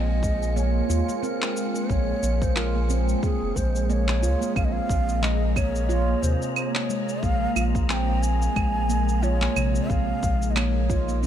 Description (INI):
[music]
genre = organic downtempo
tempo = 90 BPM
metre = 4/4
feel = swing 56% on 16ths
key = Bb minor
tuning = A4 = 440 Hz
[part]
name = breathy mellow ney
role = melody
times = 0.0-11.3 s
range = Ab4 to Ab5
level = -30 LUFS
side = equal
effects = ping-pong delay
[part]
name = warbly tape-like pad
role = sustained chords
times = 0.0-11.3 s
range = Ab3 to F4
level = -31 LUFS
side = left 2 dB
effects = chorus, built-in reverb, vintage 12-bit sampler grit, sidechain pumping
[part]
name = handpan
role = arpeggios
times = 0.0-11.3 s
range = C3 to F4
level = -30 LUFS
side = right 4 dB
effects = low-pass filter, ping-pong delay
[part]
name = warm sub bass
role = bass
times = 0.0-11.3 s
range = F1 to Eb2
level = -24 LUFS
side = equal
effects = sidechain pumping
[part]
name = wind-like tuned noise texture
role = texture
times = 0.0-11.3 s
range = Ab4 to Db7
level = -38 LUFS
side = right 1 dB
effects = built-in reverb
[part]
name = electronic cabasa, handclaps and claves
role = drums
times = 0.2-11.3 s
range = none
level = -32 LUFS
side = right 1 dB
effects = studio reverb
[part]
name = electronic kick drum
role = drums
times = 0.2-11.0 s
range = none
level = -27 LUFS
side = equal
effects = studio reverb
[sound]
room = light reverb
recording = dark, warm production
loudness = -21 LUFS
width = side -10 dB against mid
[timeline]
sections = 0.0-11.3 A section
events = none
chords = 0.0 Bbm7